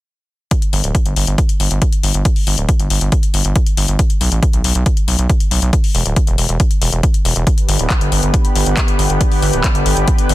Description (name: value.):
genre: uplifting trance.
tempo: 138 BPM.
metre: 4/4.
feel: straight.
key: G major.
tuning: A4 = 440 Hz.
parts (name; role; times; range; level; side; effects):
electronic kick drum; drums; 0.5-10.2 s; none; -14 LUFS; equal; overdrive.
punchy analog drum machine; drums; 0.5-10.3 s; handclaps, hi-hat; -21 LUFS; left 6 dB; overdrive.
gritty driven synth bass; bass; 0.7-10.3 s; D1 to B1; -16 LUFS; equal; sidechain pumping.
lush unison pad; sustained chords; 7.6-10.3 s; D3 to B4; -19 LUFS; equal; chorus, sidechain pumping.
room: little or no reverb.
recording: dense, heavily limited modern master.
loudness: -13 LUFS.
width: side -16 dB against mid.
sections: 0.5-10.3 A section.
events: none.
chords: 0.5 G5; 4.0 N.C.; 7.5 G.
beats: | 0.51 0.95 1.38 1.82 | 2.25 2.69 3.12 3.56 | 3.99 4.42 4.86 5.29 | 5.73 6.16 6.60 7.03 | 7.47 7.90 8.34 8.77 | 9.21 9.64 10.08.